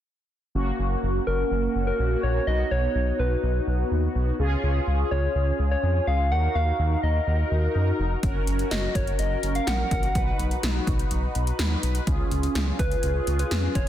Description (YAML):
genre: synth-pop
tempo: 125 BPM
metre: 4/4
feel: straight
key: unclear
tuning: A4 = 440 Hz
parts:
  - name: mellow synth brass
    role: accompaniment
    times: 0.5-13.9 s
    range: Bb3 to Cb5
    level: -29 LUFS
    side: equal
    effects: chorus, phaser
  - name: round analog bass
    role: bass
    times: 0.6-13.9 s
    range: F1 to Gb2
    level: -25 LUFS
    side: equal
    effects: none
  - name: soft struck synth lead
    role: melody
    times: 1.3-13.9 s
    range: Bb4 to Gb5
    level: -29 LUFS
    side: left 1 dB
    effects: chorus, tape echo
  - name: 80s electronic pad drums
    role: drums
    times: 8.2-13.9 s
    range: hi-hat, kick drum, snare drum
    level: -27 LUFS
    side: equal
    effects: none
room: light reverb, digital ambience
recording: dense, heavily limited modern master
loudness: -22 LUFS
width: side -11 dB against mid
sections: 0.6-13.9 A section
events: none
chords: 0.6 Gb; 2.5 Cb; 4.4 Db; 6.3 Ebm; 8.2 Gb; 10.2 Cb; 12.1 Db